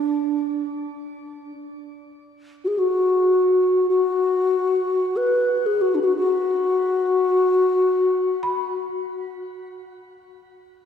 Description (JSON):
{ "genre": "world meditative, free-time meditation music", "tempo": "free time", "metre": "none", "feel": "none", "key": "unclear", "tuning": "A4 = 438 Hz", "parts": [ { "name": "mellow hollow alto flute", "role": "melody", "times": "0.0-9.4 s", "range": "D4 to B4", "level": "-19 LUFS", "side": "left 2 dB", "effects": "shimmer reverb" }, { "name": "marimba with medium hard mallets", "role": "texture", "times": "0.0-1.4, 8.4-10.9 s", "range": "B5", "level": "-29 LUFS", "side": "equal", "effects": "shimmer reverb" } ], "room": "wet scoring stage reverb, RT60 1.9 s", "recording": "none", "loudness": "-18 LUFS", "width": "side -8 dB against mid", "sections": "0.0-10.9 A section", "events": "none", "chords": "none" }